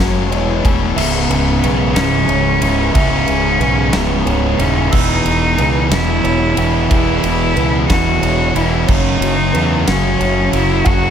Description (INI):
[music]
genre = post-rock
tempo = 61 BPM (dotted quarters)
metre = 6/8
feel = straight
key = C# minor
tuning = A4 = 436 Hz
[part]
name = clear cello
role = melody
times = 0.0-11.1 s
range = G#3 to F#4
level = -19 LUFS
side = left 1 dB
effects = slapback echo
[part]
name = hollow soft pad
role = sustained chords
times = 0.0-11.1 s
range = E3 to E6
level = -29 LUFS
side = right 2 dB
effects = none
[part]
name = electric guitar through a small old amp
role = arpeggios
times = 0.0-11.1 s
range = C#2 to F#4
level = -27 LUFS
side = left 2 dB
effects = slapback echo
[part]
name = felt-muted upright piano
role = arpeggios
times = 0.0-11.1 s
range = B4 to E6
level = -27 LUFS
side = right 5 dB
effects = slapback echo
[part]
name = distorted electric guitar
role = riff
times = 0.0-11.1 s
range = C#2 to F#3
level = -20 LUFS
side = left 11 dB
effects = overdrive
[part]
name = fuzz fingered electric bass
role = bass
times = 0.0-11.1 s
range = C#1 to E2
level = -19 LUFS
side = equal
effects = overdrive
[part]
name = huge arena drum kit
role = drums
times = 0.3-11.0 s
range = crash cymbal, kick drum, ride cymbal, snare drum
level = -20 LUFS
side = equal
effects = none
[part]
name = thick fuzz guitar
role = riff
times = 1.0-11.1 s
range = C#2 to F#3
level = -19 LUFS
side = right 9 dB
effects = distortion
[sound]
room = light reverb, small room reverb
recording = none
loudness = -12 LUFS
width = side -8 dB against mid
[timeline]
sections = 0.0-11.1 A section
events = none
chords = 0.3 E5; 1.0 C#m7; 4.9 E; 8.9 F#m